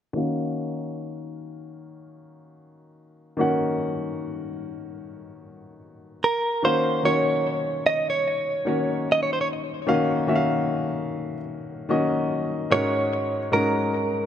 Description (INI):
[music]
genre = R&B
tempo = 74 BPM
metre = 4/4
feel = swing 58% on 16ths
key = unclear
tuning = A4 = 441 Hz
[part]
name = warm baby grand piano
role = accompaniment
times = 0.1-14.3 s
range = Ab2 to Gb5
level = -25 LUFS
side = left 2 dB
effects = low-pass filter
[part]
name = direct-recorded clean electric guitar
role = melody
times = 6.2-14.3 s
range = Bb4 to Eb5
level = -23 LUFS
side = right 2 dB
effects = ping-pong delay
[sound]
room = light reverb, small room ambience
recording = dark, warm production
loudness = -22 LUFS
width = side -9 dB against mid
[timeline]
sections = 0.1-6.6 A section; 6.6-14.3 B section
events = filter sweep on grand piano 0.1-6.6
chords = 0.1 Ebm9; 6.2 N.C.; 6.6 Ebm9; 12.7 Ab9sus4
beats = | 0.14 0.96 1.77 2.58 | 3.39 4.20 5.01 5.82 | 6.63 7.44 8.25 9.06 | 9.88 10.69 11.50 12.31 | 13.12 13.93